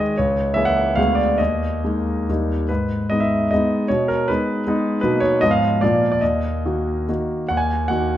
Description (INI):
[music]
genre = classical, romantic triple-time dance for piano with dotted rhythms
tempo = 127-170 BPM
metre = 3/4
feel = rubato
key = G# minor, Eb minor from 5.0 s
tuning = A4 = 441 Hz
[part]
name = warm concert grand piano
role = solo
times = 0.0-8.2 s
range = C#2 to Ab5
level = -17 LUFS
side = equal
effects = none
[sound]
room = wet recital hall reverb, RT60 1.5 s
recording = none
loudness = -17 LUFS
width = side -12 dB against mid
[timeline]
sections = 0.0-7.5 A section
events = none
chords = 0.2 A#m7b5/C#; 1.0 Ddim7; 1.4 D#sus4; 2.3 D#; 2.7 G#m; 3.9 G#m/B; 5.0 Bmaj7; 5.4 Fdim/Ab; 5.8 Bb; 6.2 Ebm